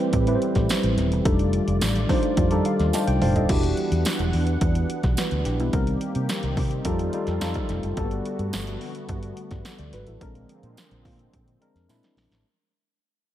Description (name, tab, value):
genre	polished 1980s jazz-funk pop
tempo	107 BPM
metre	4/4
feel	straight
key	unclear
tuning	A4 = 440 Hz
part	tine electric piano	accompaniment	0.0-12.5 s	G3 to A5	-26 LUFS	equal	analog chorus
part	warm analog pad	sustained chords	0.0-12.4 s	D3 to F#5	-31 LUFS	right 1 dB	chorus
part	vintage muted fingered electric bass	bass	0.1-12.4 s	D#1 to C3	-25 LUFS	equal	none
part	punchy analog drum machine	drums	0.1-12.4 s	crash cymbal, hi-hat, kick drum, snare drum, toms	-27 LUFS	equal	gated reverb
part	tambourine	percussion	0.7-12.0 s	none	-37 LUFS	right 8 dB	none
room	little or no reverb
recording	none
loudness	-21 LUFS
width	side -12 dB against mid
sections	0.0-3.5 A section; 3.5-12.4 B section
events	tine electric piano fill 2.4-3.5; drum fill 2.9-3.5, 11.9-12.4; fade-out 3.5-12.4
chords	0.0 Am7; 1.3 F13; 3.5 Em9; 5.7 Cm7; 6.9 F9; 8.0 Gmaj9; 10.2 A#9